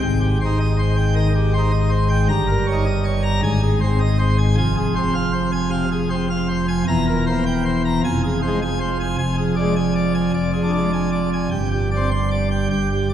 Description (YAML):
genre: classical, organ toccata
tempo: 104 BPM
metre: 4/4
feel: straight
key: unclear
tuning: A4 = 441 Hz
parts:
  - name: pipe organ, plenum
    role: solo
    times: 0.0-13.1 s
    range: E1 to C6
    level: -17 LUFS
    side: equal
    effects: none
room: wet church reverb, RT60 2.6 s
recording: heard from further back in the room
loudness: -17 LUFS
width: side -10 dB against mid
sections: 0.0-13.1 A section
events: none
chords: 0.0 Abmaj7; 2.3 Eb7/G; 3.4 Ab; 4.6 Fm; 6.9 C7/E; 8.0 Fm; 9.2 Ddim/F; 11.5 Gsus4